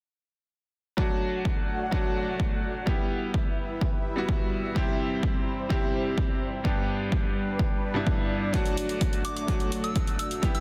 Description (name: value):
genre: EDM, festival progressive house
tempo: 127 BPM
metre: 4/4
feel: straight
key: unclear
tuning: A4 = 440 Hz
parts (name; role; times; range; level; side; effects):
- clear grand piano; accompaniment; 1.0-10.6 s; G2 to G4; -33 LUFS; equal; sidechain pumping, delay
- lush unison pad; sustained chords; 1.0-10.6 s; G3 to F#5; -37 LUFS; equal; chorus, phaser, sidechain pumping
- electronic kick drum; drums; 1.0-10.5 s; none; -30 LUFS; equal; overdrive, studio reverb
- electronic hi-hat; drums; 8.5-10.6 s; none; -40 LUFS; equal; studio reverb
- soft synth bell; melody; 9.2-10.6 s; D6 to E6; -37 LUFS; equal; chorus, dub echo
room: light reverb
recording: dense, heavily limited modern master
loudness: -28 LUFS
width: mono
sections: 1.0-10.6 A section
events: none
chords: 1.0 D; 2.9 Em; 4.8 C; 6.7 G; 8.5 D